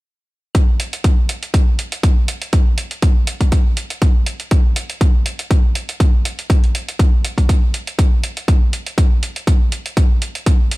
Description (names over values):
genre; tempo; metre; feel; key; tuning
nu-disco, nu disco; 121 BPM; 4/4; swing 54% on 16ths; none; none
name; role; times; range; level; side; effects
electronic hi-hat; drums; 0.5-10.8 s; none; -26 LUFS; right 2 dB; none
electronic kick drum; drums; 0.5-10.6 s; none; -13 LUFS; equal; overdrive
room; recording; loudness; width
digital ambience; none; -14 LUFS; side -20 dB against mid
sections
0.5-10.8 A section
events
none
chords
none